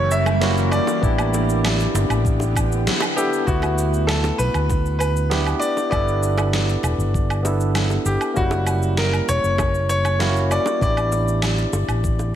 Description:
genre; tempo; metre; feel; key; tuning
sunset chillout; 98 BPM; 4/4; straight; D major; A4 = 440 Hz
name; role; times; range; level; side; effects
bright concert grand piano; melody; 0.0-12.4 s; F#4 to E5; -24 LUFS; right 1 dB; digital delay
barky tine electric piano; accompaniment; 0.0-12.4 s; G3 to A4; -25 LUFS; moving between left 5 dB and right 5 dB; overdrive, auto-pan, ping-pong delay
shimmering ambient pad; sustained chords; 0.0-3.5 s; D3 to G4; -28 LUFS; equal; chorus, built-in reverb
mellow fretless electric bass; bass; 0.0-12.4 s; E1 to D2; -21 LUFS; equal; none
electronic shaker, woodblock and snare drum; drums; 0.1-12.3 s; none; -26 LUFS; right 1 dB; small room reverb
bongos; percussion; 0.3-12.3 s; none; -31 LUFS; right 2 dB; none
electronic kick drum; drums; 1.0-12.2 s; none; -23 LUFS; equal; small room reverb
room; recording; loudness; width
light reverb; none; -17 LUFS; side -10 dB against mid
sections
0.0-3.5 A section; 3.5-12.4 B section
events
band accent 2.9-3.2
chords
0.0 F#7b9; 1.0 A9sus4; 3.5 D69; 5.6 G6; 8.4 F#7b9; 10.8 A9sus4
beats
0.41 | 1.02 1.64 2.25 2.86 | 3.47 4.09 4.70 5.31 | 5.92 6.54 7.15 7.76 | 8.37 8.98 9.60 10.21 | 10.82 11.43 12.04

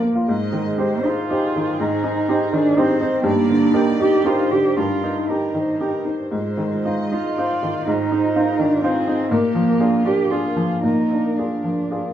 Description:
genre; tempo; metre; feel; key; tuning
neoclassical piano and strings; 110-127 BPM; 3/4; rubato; unclear; A4 = 440 Hz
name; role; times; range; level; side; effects
muted cello; second line; 0.0-12.1 s; Ab3 to G4; -21 LUFS; right 3 dB; none
bright upright piano; accompaniment; 0.0-12.1 s; G2 to C5; -20 LUFS; equal; none
vibraphone with soft mallets; arpeggios; 0.1-12.1 s; Eb4 to Ab5; -28 LUFS; left 4 dB; none
muted chamber violin section; melody; 0.3-12.1 s; F4 to Eb5; -32 LUFS; left 1 dB; none
room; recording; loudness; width
wet stone room reverb, RT60 1.0 s; band playing live in one room; -17 LUFS; side -10 dB against mid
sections
0.3-12.1 A section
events
none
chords
0.3 Abmaj7; 3.3 Ebmaj7/G; 6.3 Fm7/Ab; 9.3 Bb7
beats
| 0.28 0.79 1.31 | 1.80 2.29 2.78 | 3.25 3.75 4.25 | 4.77 5.29 5.80 | 6.32 6.84 7.37 | 7.86 8.35 8.83 | 9.32 9.80 10.31 | 10.84 11.38 11.91

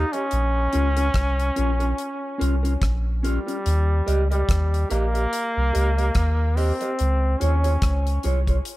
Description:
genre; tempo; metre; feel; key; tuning
roots reggae; 72 BPM; 4/4; swing 57% on 16ths; Eb mixolydian; A4 = 440 Hz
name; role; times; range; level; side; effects
brilliant trombone; melody; 0.0-8.2 s; G3 to Eb4; -26 LUFS; equal; dub echo
mellow electric guitar; accompaniment; 0.0-8.6 s; Db4 to Eb5; -30 LUFS; right 1 dB; dub echo
soft dub sub bass; bass; 0.0-8.6 s; Bb1 to Eb2; -21 LUFS; equal; none
damped 70s drum kit; drums; 0.1-8.8 s; hi-hat, kick drum, rim click; -27 LUFS; equal; none
room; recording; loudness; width
small room ambience; none; -20 LUFS; side -17 dB against mid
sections
0.0-8.8 A section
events
none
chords
0.3 Bbm; 3.6 Eb; 7.0 Db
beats
| 0.31 1.14 1.98 2.81 | 3.65 4.48 5.32 6.15 | 6.98 7.82 8.65

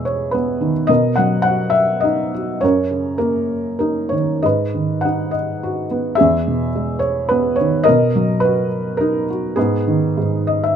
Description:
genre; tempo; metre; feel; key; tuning
classical, lyrical solo piano; 93-112 BPM; 3/4; rubato; G# minor; A4 = 440 Hz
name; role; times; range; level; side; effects
felt-muted upright piano; solo; 0.0-10.8 s; E2 to F#5; -15 LUFS; equal; none
room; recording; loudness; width
light reverb; minimal, uncompressed stereo recording; -15 LUFS; side -8 dB against mid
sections
0.0-10.8 A section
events
felt piano fill 10.2-10.8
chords
0.0 Emaj7; 0.9 Bmaj7; 2.6 F#6; 4.4 G#m7; 6.2 Emaj7; 7.9 Bmaj7; 9.6 G#m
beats
0.34 | 0.90 1.47 2.05 | 2.63 3.21 3.82 | 4.44 5.04 5.62 | 6.17 6.73 7.30 | 7.86 8.43 8.99 | 9.56 10.16

